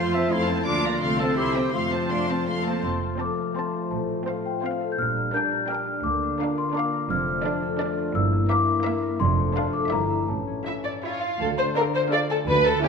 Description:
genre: cinematic.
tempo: 169 BPM.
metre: 3/4.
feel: straight.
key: F major, D minor from 7.1 s.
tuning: A4 = 440 Hz.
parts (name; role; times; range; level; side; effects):
warm chamber violin section; melody; 0.0-12.9 s; D5 to D6; -33 LUFS; left 4 dB; none.
dark studio violin section; second line; 0.0-12.9 s; F4 to F5; -27 LUFS; equal; none.
warm clarinet; second line; 0.0-2.6 s; E4 to E5; -29 LUFS; left 1 dB; none.
dark studio viola section; accompaniment; 0.0-12.9 s; A3 to A4; -32 LUFS; right 3 dB; none.
concert harp; arpeggios; 0.0-12.9 s; F2 to A5; -30 LUFS; left 4 dB; none.
warm studio cello section; bass; 0.0-12.7 s; D2 to F4; -30 LUFS; right 4 dB; none.
warm studio double bass section; bass; 0.0-12.8 s; F1 to F2; -31 LUFS; right 5 dB; none.
large celesta; melody; 2.8-11.2 s; F5 to G6; -28 LUFS; left 4 dB; none.
dark French horn section; sustained chords; 2.9-11.2 s; E3 to F4; -31 LUFS; left 3 dB; none.
warm tuba; bass; 11.4-12.8 s; D2; -32 LUFS; right 4 dB; none.
room: wet scoring stage reverb, RT60 1.6 s.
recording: minimal, uncompressed stereo recording.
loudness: -22 LUFS.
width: side -5 dB against mid.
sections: 0.0-2.8 A section; 2.8-11.4 B section; 11.4-12.9 A section.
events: none.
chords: 0.0 F; 0.7 Bb/D; 1.0 F/C; 1.4 C; 1.7 F; 3.9 F/A; 5.0 Bb6; 6.0 Bb/D; 7.1 Dm/F; 8.1 Edim/G; 9.2 Dm/F; 9.9 Edim/G; 10.3 A; 11.4 Dm.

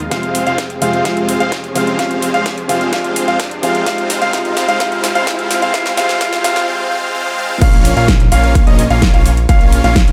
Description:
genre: EDM, festival progressive house.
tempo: 128 BPM.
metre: 4/4.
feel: straight.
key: unclear.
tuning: A4 = 440 Hz.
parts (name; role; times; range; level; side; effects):
felt-muted upright piano; accompaniment; 0.0-7.6 s; C3 to F4; -24 LUFS; equal; sidechain pumping, tape echo.
muted studio string section; sustained chords; 0.0-6.7 s; F3 to Ab4; -28 LUFS; equal; none.
fat analog bass; bass; 0.0-10.1 s; F1 to F2; -20 LUFS; equal; sidechain pumping.
big-room dance drum kit; drums; 0.0-10.1 s; crash cymbal, hi-hat, snare drum, toms; -23 LUFS; equal; high-pass filter on hats, high-pass filter on snare, high-pass filter on toms, high-pass filter on cymbals, high-pass filter on room.
riser; sound effects; 0.0-6.7 s; none; -29 LUFS; equal; none.
warm grand piano; arpeggios; 0.1-10.0 s; Eb5 to F5; -21 LUFS; equal; sidechain pumping, tape echo.
supersaw chords; riff; 0.1-10.0 s; Ab3 to F5; -21 LUFS; equal; sidechain pumping, low-pass filter, tape echo.
electronic kick drum; drums; 0.1-10.1 s; none; -14 LUFS; equal; high-pass filter on kick, high-pass filter on room.
room: light reverb.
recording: high-pass filter.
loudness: -14 LUFS.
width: mono.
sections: 0.0-7.6 A section; 7.6-10.1 B section.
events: build-up 0.0-7.6; filter sweep on supersaw synth 0.0-7.6; drum fill 0.1-6.7, 7.3-7.6; break 6.7-7.6; drop 7.6-10.1.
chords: 0.1 Fm; 3.9 Db; 7.6 Bbm.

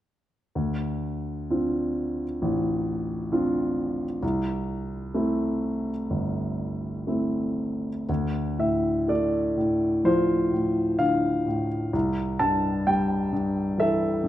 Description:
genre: classical, lyrical solo piano.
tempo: 63 BPM.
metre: 4/4.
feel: uneven beats, rubato.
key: unclear.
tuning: A4 = 440 Hz.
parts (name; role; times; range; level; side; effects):
warm grand piano; solo; 0.6-14.3 s; G1 to A5; -23 LUFS; equal; none.
room: moderate recital hall reverb, RT60 1.3 s.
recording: dark, warm production.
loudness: -24 LUFS.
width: side -13 dB against mid.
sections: 0.5-8.1 A section; 8.1-14.3 B section.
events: none.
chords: 0.5 Dm7; 4.2 C6; 8.1 Dm7; 11.9 C6.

